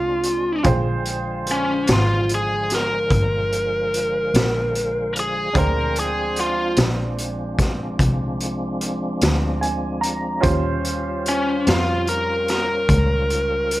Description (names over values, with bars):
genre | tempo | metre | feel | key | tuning
slow blues | 49 BPM (dotted quarters) | 12/8 | straight | Bb mixolydian | A4 = 440 Hz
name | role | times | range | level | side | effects
biting lead guitar | melody | 0.0-13.8 s | Db4 to Bb4 | -21 LUFS | equal | overdrive
clear concert grand piano | accompaniment | 0.0-13.8 s | Db4 to Bb5 | -27 LUFS | right 3 dB | plate reverb
tonewheel organ | sustained chords | 0.0-13.8 s | D3 to C5 | -29 LUFS | equal | chorus vibrato, stopped rotary speaker, plate reverb
warm double bass | bass | 0.0-13.8 s | G1 to F2 | -24 LUFS | equal | none
raw garage drum kit | drums | 0.2-13.8 s | hi-hat, kick drum, snare drum | -22 LUFS | equal | none
room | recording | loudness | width
light reverb | dark, warm production | -18 LUFS | side -16 dB against mid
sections
0.0-13.8 A section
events
lead electric guitar solo 0.0-13.8; grand piano fill 9.2-10.4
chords
0.0 Bb13; 10.4 Eb13